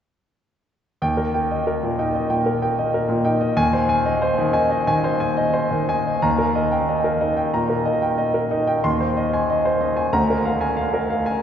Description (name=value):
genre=classical, virtuoso piano study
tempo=92 BPM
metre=4/4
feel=rubato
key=Eb major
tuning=A4 = 440 Hz
part: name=warm concert grand piano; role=solo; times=1.0-11.4 s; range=D2 to C6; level=-18 LUFS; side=equal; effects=none
room=wet cathedral reverb, RT60 6.2 s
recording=heard from further back in the room, nothing above 8.0 kHz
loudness=-18 LUFS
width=side -9 dB against mid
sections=1.0-6.2 A section; 6.2-11.4 B section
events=none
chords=1.0 Eb; 3.6 Ab/Eb; 6.2 Eb; 8.8 Ab/Eb; 10.1 Bb7/D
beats=| 1.01 1.67 2.31 2.95 | 3.58 4.22 4.87 5.54 | 6.23 6.89 7.54 8.19 | 8.84 9.49 10.12 10.77 | 11.41